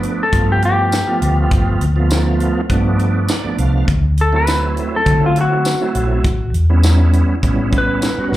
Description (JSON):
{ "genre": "straight-eighth soul blues", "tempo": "101 BPM", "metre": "4/4", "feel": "straight", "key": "unclear", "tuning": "A4 = 441 Hz", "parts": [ { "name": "clean lap steel guitar", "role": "melody", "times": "0.0-8.4 s", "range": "F4 to B4", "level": "-18 LUFS", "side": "left 2 dB", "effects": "slapback echo" }, { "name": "bright tonewheel organ", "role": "accompaniment", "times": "0.0-8.4 s", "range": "F3 to F5", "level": "-20 LUFS", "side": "right 3 dB", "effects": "slow rotary speaker, chorus vibrato, slapback echo" }, { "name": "vintage muted fingered electric bass", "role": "bass", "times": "0.0-8.4 s", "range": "G1 to D3", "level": "-15 LUFS", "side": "equal", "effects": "none" }, { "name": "tight funk drum kit", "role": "drums", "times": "0.0-8.4 s", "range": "hi-hat, kick drum, snare drum, tambourine", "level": "-20 LUFS", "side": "equal", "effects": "none" } ], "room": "light reverb", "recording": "live gig heard through the venue's PA, club reverb", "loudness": "-13 LUFS", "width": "side -15 dB against mid", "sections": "0.0-8.4 A section", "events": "tonewheel organ fill 3.0-3.9", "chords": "0.0 G7; 3.9 D7; 6.2 A7", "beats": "0.33 0.92 | 1.51 2.10 2.70 3.29 | 3.88 4.47 5.06 5.66 | 6.25 6.84 7.43 8.03" }